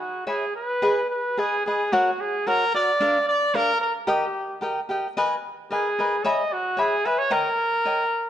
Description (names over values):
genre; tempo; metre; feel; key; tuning
mexican folk, mariachi; 111 BPM; 2/4; rubato; G# minor; A4 = 436 Hz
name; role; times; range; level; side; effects
clear trumpet; melody; 0.0-8.3 s; F#4 to D#5; -22 LUFS; right 1 dB; none
cavaquinho; accompaniment; 0.3-8.0 s; D4 to B5; -25 LUFS; left 1 dB; none
room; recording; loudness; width
moderate recital hall reverb, RT60 1.7 s; dark, warm production; -21 LUFS; side -10 dB against mid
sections
0.8-8.3 A section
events
none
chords
0.0 C#m7; 0.8 G#m; 1.9 F#; 3.0 A#; 4.1 D#; 5.2 G#madd9; 6.3 C#m7; 7.3 D#7